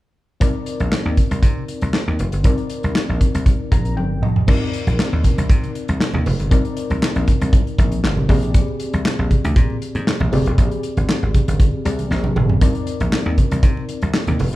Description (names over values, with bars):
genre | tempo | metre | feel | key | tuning
early-eighties boogie funk | 118 BPM | 4/4 | straight | C minor | A4 = 441 Hz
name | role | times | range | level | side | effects
FM electric piano with tremolo | accompaniment | 0.4-14.6 s | C4 to Bb5 | -26 LUFS | left 3 dB | none
dry thumbed slap bass | bass | 0.4-14.6 s | F1 to C3 | -21 LUFS | equal | none
modern studio drum kit | drums | 0.4-14.6 s | crash cymbal, handclaps, hi-hat, kick drum, snare drum, toms | -17 LUFS | equal | none
congas | percussion | 4.5-14.5 s | none | -25 LUFS | right 2 dB | none
room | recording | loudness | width
light reverb | band playing live in one room | -16 LUFS | side -16 dB against mid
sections
0.4-4.5 A section; 4.5-14.6 B section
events
FM electric piano fill 3.5-4.5; drum fill 4.0-4.5, 12.1-12.6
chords
0.4 Cm9; 4.2 Cm; 4.5 Cm9; 8.3 Bb13; 12.6 Cm9